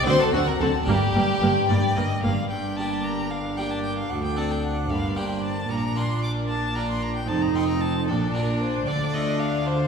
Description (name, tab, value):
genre	classical, baroque-style concerto movement with solo episodes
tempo	75 BPM (dotted quarters)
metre	6/8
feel	straight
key	G minor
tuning	A4 = 440 Hz
part	clear violin	melody	0.0-9.9 s	F#4 to D6	-30 LUFS	left 2 dB	none
part	rich studio violin section	melody	0.0-9.9 s	F4 to C6	-34 LUFS	left 2 dB	none
part	rich chamber violin section	second line	0.0-9.9 s	F#4 to F5	-31 LUFS	left 2 dB	none
part	harpsichord	accompaniment	0.0-9.9 s	D2 to A4	-30 LUFS	left 1 dB	none
part	rich studio viola section	accompaniment	0.1-9.9 s	Bb3 to Eb4	-29 LUFS	right 2 dB	none
part	rich studio double bass section	bass	0.1-9.9 s	F1 to D2	-29 LUFS	right 2 dB	none
part	rich symphonic cello section	bass	0.1-9.9 s	D2 to D3	-28 LUFS	right 1 dB	none
room	wet recital hall reverb, RT60 1.3 s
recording	recorded in a church or concert hall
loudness	-22 LUFS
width	side -6 dB against mid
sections	0.0-2.5 A section; 2.5-9.9 B section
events	none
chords	0.1 D7; 0.9 Gm; 4.1 D5; 4.9 Gm; 5.7 Bb; 7.3 F5; 8.1 Bb; 8.9 Dm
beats	0.06 | 0.88 1.69 | 2.50 3.31 | 4.10 4.90 | 5.70 6.49 | 7.29 8.08 | 8.87 9.66